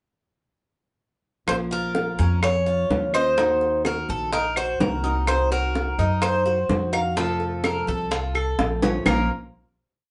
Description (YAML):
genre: latin, Cuban son and guajira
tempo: 126 BPM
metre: 4/4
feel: straight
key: Bb harmonic minor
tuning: A4 = 441 Hz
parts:
  - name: Cuban tres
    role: melody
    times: 1.5-9.3 s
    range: A4 to Db5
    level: -27 LUFS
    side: equal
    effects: none
  - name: nylon-string guitar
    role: accompaniment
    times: 1.5-9.3 s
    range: Bb2 to Gb4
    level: -32 LUFS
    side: equal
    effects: none
  - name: upright bass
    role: bass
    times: 1.5-9.3 s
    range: Bb1 to Gb2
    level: -29 LUFS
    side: equal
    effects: none
  - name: bongos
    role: percussion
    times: 1.5-9.2 s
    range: none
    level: -29 LUFS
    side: equal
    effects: none
  - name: claves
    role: percussion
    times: 1.5-9.2 s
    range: none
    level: -30 LUFS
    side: equal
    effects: none
  - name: Cuban tres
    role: arpeggios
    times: 1.7-9.3 s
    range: Bb3 to F5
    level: -32 LUFS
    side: equal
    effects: none
room: wet small room reverb, RT60 0.5 s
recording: band playing live in one room, nothing above 10.7 kHz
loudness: -23 LUFS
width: mono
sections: 1.5-9.1 verse; 9.1-10.1 final chord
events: drum fill 8.6-9.1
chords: 1.5 Bbm; 3.4 Ebm; 5.3 Cdim; 7.2 F; 9.1 Bbm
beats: | 1.47 1.95 2.42 2.90 | 3.38 3.85 4.32 4.80 | 5.27 5.75 6.22 6.70 | 7.17 7.64 8.12 8.59 | 9.07